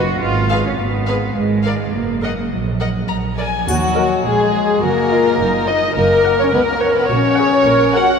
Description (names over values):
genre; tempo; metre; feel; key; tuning
cinematic, playful, whimsical film cue; 105 BPM; 2/4; straight; Eb minor; A4 = 442 Hz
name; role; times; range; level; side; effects
warm chamber violin section; second line; 0.0-8.2 s; Gb4 to Gb5; -19 LUFS; left 1 dB; none
clear chamber double bass section; bass; 0.0-8.1 s; F#1 to Eb2; -22 LUFS; right 3 dB; none
warm studio cello section; bass; 0.0-8.1 s; Db2 to F#4; -23 LUFS; right 3 dB; none
warm chamber violin section; melody; 0.5-8.1 s; Eb5 to Bb5; -28 LUFS; left 4 dB; none
warm chamber viola section; accompaniment; 0.5-8.0 s; Eb4 to Bb4; -22 LUFS; right 1 dB; none
warm French horn section; sustained chords; 3.7-8.1 s; Gb3 to Gb4; -16 LUFS; left 4 dB; none
triangle; percussion; 3.7-4.8 s; none; -30 LUFS; left 4 dB; none
room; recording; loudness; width
wet cathedral reverb, RT60 4.9 s; none; -14 LUFS; side -6 dB against mid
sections
0.0-3.7 A section; 3.7-8.2 A section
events
none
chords
0.2 Fdim/Ab; 1.4 Bb7(no3)/Ab; 1.9 Ebm/Gb (rootless); 2.5 Ebm/Bb (rootless); 3.1 N.C.; 3.7 Ebm; 4.8 Ebm/Gb; 6.0 Gb; 7.1 Gb/Bb